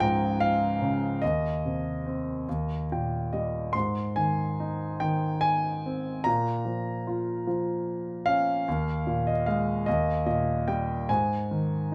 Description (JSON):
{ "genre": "classical, lyrical solo piano", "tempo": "49 BPM (dotted quarters)", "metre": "6/8", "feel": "rubato", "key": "Ab major", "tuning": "A4 = 439 Hz", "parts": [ { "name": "warm grand piano", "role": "solo", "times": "0.0-11.9 s", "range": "Db2 to C6", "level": "-28 LUFS", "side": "equal", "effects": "none" } ], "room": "moderate studio reverb, RT60 0.8 s", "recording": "none", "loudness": "-28 LUFS", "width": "mono", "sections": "0.0-11.9 A section", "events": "grand piano fill 2.5-3.7", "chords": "0.0 Db; 1.2 Cm/Eb; 2.5 Eb; 3.7 Ab; 6.3 Bbm; 8.7 Ebsus4; 9.9 Eb; 11.1 Ab5" }